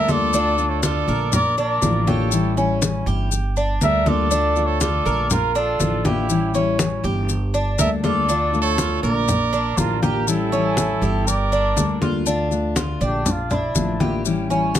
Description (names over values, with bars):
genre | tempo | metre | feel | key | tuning
latin, Cuban son and guajira | 121 BPM | 4/4 | straight | D harmonic minor | A4 = 440 Hz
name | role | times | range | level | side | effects
trumpet with cup mute | melody | 0.0-14.3 s | E4 to E5 | -23 LUFS | right 1 dB | none
bright trumpet | second line | 0.0-12.0 s | E4 to Bb4 | -28 LUFS | right 10 dB | none
fingerpicked steel-string acoustic guitar | accompaniment | 0.0-14.8 s | D3 to A4 | -24 LUFS | left 6 dB | none
Cuban tres | arpeggios | 0.0-14.8 s | C#4 to Bb4 | -25 LUFS | right 2 dB | none
upright bass | bass | 0.0-14.8 s | G1 to D2 | -24 LUFS | right 1 dB | none
congas | percussion | 0.1-14.8 s | none | -24 LUFS | left 1 dB | none
maracas | percussion | 0.1-14.8 s | none | -28 LUFS | left 9 dB | none
room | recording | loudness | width
light reverb | close, detailed microphones | -18 LUFS | side -11 dB against mid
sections
0.0-12.3 A section; 12.3-14.8 B section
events
muted trumpet solo 12.3-14.8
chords
0.3 Dm; 1.3 Bb; 2.3 A7; 3.3 Gmadd9; 4.3 Dm; 5.3 Bb; 6.3 A7; 7.3 Gmadd9; 8.3 Dm; 9.3 Bb; 10.3 A7; 11.3 Gmadd9; 12.3 Dm; 13.3 Bb; 14.3 A7